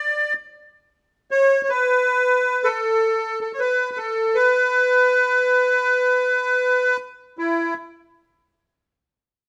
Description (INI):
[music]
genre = arabic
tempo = 79 BPM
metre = 4/4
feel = straight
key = unclear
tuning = A4 = 445 Hz
[part]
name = accordion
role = solo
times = 0.0-7.7 s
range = E4 to D5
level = -20 LUFS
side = equal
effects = light tremolo tuning
[sound]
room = moderate stone room reverb, RT60 1.2 s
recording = band playing live in one room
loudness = -20 LUFS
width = mono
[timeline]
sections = 0.0-7.4 A section; 7.4-9.5 B section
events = none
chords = none